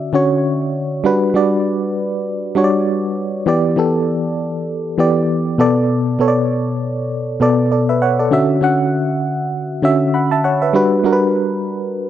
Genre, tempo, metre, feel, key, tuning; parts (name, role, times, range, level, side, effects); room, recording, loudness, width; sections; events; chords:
afrobeats; 99 BPM; 4/4; swing 58% on 16ths; D major; A4 = 440 Hz
FM electric piano with auto-pan; solo; 0.0-12.1 s; B2 to B5; -14 LUFS; equal; analog delay
little or no reverb; dry, gritty hardware recording; -14 LUFS; side -11 dB against mid
0.0-12.1 A section
0.0 Dmaj9; 1.0 Gmaj7; 3.5 Em7; 5.6 Bm7; 8.3 Dmaj9; 10.7 Gmaj7